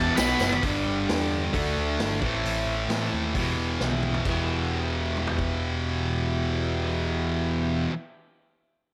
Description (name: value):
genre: garage rock duo or trio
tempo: 132 BPM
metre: 4/4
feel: straight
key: E minor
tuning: A4 = 442 Hz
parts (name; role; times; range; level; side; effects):
- octave-fuzz lead guitar; melody; 0.0-0.6 s; A5 to B5; -31 LUFS; equal; distortion
- overdriven combo organ; sustained chords; 0.0-7.9 s; B3 to D5; -38 LUFS; equal; none
- fuzz guitar; riff; 0.0-7.9 s; E2 to D4; -29 LUFS; equal; distortion
- overdriven picked electric bass; bass; 0.0-7.9 s; E1 to E2; -33 LUFS; equal; none
- vintage drum kit; drums; 0.2-5.5 s; crash cymbal, hi-hat, kick drum, snare drum, toms; -33 LUFS; equal; none
- tambourine; percussion; 0.2-0.5 s; none; -40 LUFS; equal; none
room: light reverb, studio reverb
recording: none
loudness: -26 LUFS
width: mono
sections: 0.6-4.2 A section; 4.2-7.9 B section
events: drum fill 0.4, 3.8-4.2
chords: 0.2 B; 0.6 G; 1.5 D; 2.2 Am; 3.3 Em